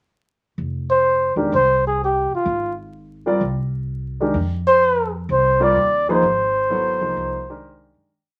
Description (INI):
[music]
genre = jazz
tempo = 127 BPM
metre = 4/4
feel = swing 66% on 8ths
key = F dorian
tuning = A4 = 439 Hz
[part]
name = upright bass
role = bass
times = 0.6-8.1 s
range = E1 to Gb2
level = -29 LUFS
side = equal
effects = none
[part]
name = trumpet with bucket mute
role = melody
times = 0.9-7.9 s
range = F4 to D5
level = -19 LUFS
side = equal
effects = none
[part]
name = warm concert grand piano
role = accompaniment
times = 1.4-8.1 s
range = Eb3 to D5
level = -24 LUFS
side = equal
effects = none
[sound]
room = moderate studio reverb, RT60 0.6 s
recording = vinyl crackle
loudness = -19 LUFS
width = mono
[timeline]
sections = 0.6-8.1 A section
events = fade-out 6.2-8.1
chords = 0.6 Fm9